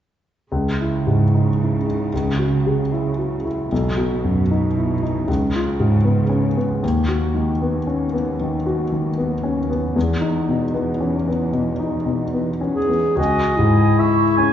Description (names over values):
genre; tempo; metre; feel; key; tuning
cinematic, emotional film score for orchestra; 76 BPM; 4/4; rubato; unclear; A4 = 440 Hz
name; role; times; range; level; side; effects
warm grand piano; accompaniment; 0.5-14.5 s; B1 to F#4; -19 LUFS; left 1 dB; none
muted studio cello section; bass; 0.5-12.9 s; D#2 to C#3; -25 LUFS; right 4 dB; none
mellow clarinet; second line; 12.7-14.5 s; E4 to G#4; -19 LUFS; left 3 dB; none
clear oboe; second line; 13.2-14.5 s; D#5 to G#5; -23 LUFS; right 2 dB; none
mellow hollow flute section; second line; 13.2-14.5 s; G#5 to C#6; -21 LUFS; right 2 dB; none
room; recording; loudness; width
wet recital hall reverb, RT60 1.6 s; recorded in a church or concert hall, nothing above 7.7 kHz; -17 LUFS; side -10 dB against mid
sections
0.5-13.2 A section; 13.2-14.5 B section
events
none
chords
0.5 C#madd9; 2.1 F#5/C#; 3.7 B; 5.3 C#7; 6.8 D#m7; 10.0 E5; 13.2 C#madd9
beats
| 0.51 1.32 2.12 2.91 | 3.71 4.50 5.28 6.05 | 6.83 7.61 8.39 9.17 | 9.95 10.74 11.53 12.34 | 13.18 13.98